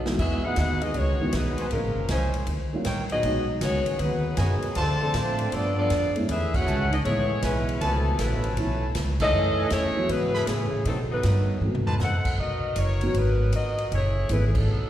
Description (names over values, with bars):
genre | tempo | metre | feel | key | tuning
jazz, big band swing | 158 BPM | 4/4 | swing 66% on 8ths | E major | A4 = 438 Hz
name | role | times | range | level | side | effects
warm saxophone section | melody | 0.0-14.9 s | E3 to F#5 | -28 LUFS | left 2 dB | slapback echo
clear trombone section | second line | 0.0-11.6 s | B2 to G#4 | -32 LUFS | right 4 dB | slapback echo
dark upright piano | accompaniment | 0.0-3.8, 6.2-14.7 s | D#3 to G#4 | -30 LUFS | equal | slapback echo
upright bass | bass | 0.0-14.9 s | E#1 to B2 | -26 LUFS | equal | none
swinging big-band drum kit | drums | 0.1-14.6 s | crash cymbal, hi-hat, kick drum, ride cymbal, snare drum, toms | -33 LUFS | equal | none
clear trumpet section | stabs | 1.6-12.0 s | C#4 to B5 | -33 LUFS | equal | slapback echo
room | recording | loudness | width
light reverb, small room reverb | live gig heard through the venue's PA, recital hall reverb | -22 LUFS | side -12 dB against mid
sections
0.2-12.4 A section; 12.4-14.9 B section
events
drum fill 0.0, 11.6-12.0; band accent 6.5, 9.1, 14.5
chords
0.2 Emaj9; 1.7 A#m11; 2.5 D#7; 3.2 G#m7; 4.8 Dm7; 5.5 G9; 6.3 Amaj9; 7.8 C#7alt; 9.3 F#m11; 10.9 B7b9; 12.4 Bmaj7; 13.9 F#m11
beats
| 0.19 0.57 0.95 1.33 | 1.72 2.10 2.48 2.86 | 3.24 3.62 4.00 4.38 | 4.76 5.14 5.53 5.91 | 6.29 6.67 7.05 7.43 | 7.81 8.19 8.57 8.95 | 9.33 9.71 10.09 10.47 | 10.86 11.24 11.62 12.00 | 12.38 12.76 13.14 13.53 | 13.91 14.29 14.67